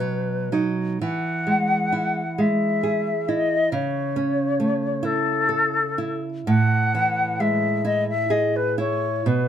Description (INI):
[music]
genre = romantic duo for flute and classical guitar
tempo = 44 BPM (dotted quarters)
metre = 6/8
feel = uneven beats, rubato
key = unclear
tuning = A4 = 442 Hz
[part]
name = concert flute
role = melody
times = 0.0-9.5 s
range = A4 to F#5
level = -23 LUFS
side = left 4 dB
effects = none
[part]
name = nylon-string guitar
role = accompaniment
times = 0.0-9.5 s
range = A2 to A4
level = -23 LUFS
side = right 3 dB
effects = none
[sound]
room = light reverb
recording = none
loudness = -20 LUFS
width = side -9 dB against mid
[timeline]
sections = 0.0-1.0 A section; 1.0-9.5 A section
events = none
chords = 0.0 B; 1.0 E; 3.7 A/C#; 6.5 A5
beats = | 1.03 2.40 | 3.73 5.04 | 6.49 7.86 | 9.27